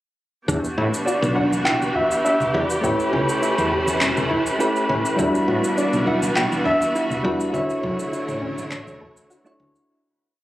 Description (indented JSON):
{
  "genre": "sunset chillout",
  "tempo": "102 BPM",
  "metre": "4/4",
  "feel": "straight",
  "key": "E dorian",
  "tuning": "A4 = 435 Hz",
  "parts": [
    { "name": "rich studio string section", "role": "sustained chords", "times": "0.5-9.9 s", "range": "D3 to C#5", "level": "-25 LUFS", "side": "equal", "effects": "none" },
    { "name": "soft round pluck", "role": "arpeggios", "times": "0.5-9.7 s", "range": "C#4 to A4", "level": "-28 LUFS", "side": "left 1 dB", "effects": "chorus, tape echo" },
    { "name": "woody fretless electric bass", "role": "bass", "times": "0.5-9.7 s", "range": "E1 to A2", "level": "-26 LUFS", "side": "equal", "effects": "none" },
    { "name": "electronic kick drum", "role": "drums", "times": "0.5-9.1 s", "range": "none", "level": "-34 LUFS", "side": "equal", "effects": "small room ambience" },
    { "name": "electronic shaker and handclaps", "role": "drums", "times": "0.5-9.9 s", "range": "none", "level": "-28 LUFS", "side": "equal", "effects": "small room ambience" },
    { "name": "wind-like tuned noise texture", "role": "texture", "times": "0.9-9.9 s", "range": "B4 to B5", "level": "-30 LUFS", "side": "equal", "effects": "built-in reverb" },
    { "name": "dark grand piano", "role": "melody", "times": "1.1-8.1 s", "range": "C#5 to G5", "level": "-24 LUFS", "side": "equal", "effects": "digital delay" },
    { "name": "congas", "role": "percussion", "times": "1.5-9.0 s", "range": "none", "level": "-32 LUFS", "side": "equal", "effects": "none" },
    { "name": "soft electric-piano-like synth keys", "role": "accompaniment", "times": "2.8-9.9 s", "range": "G3 to C#5", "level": "-24 LUFS", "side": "equal", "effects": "chorus, auto-pan, tape echo" }
  ],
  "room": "moderate plate reverb, RT60 1.3 s",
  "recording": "recorded on a phone in the room, club reverb, compression",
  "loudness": "-18 LUFS",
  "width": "side -15 dB against mid",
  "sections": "0.5-9.9 groove",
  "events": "fade-out 6.8-9.9",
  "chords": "0.5 Em9; 2.8 A9; 5.2 Em9; 7.5 Dmaj9"
}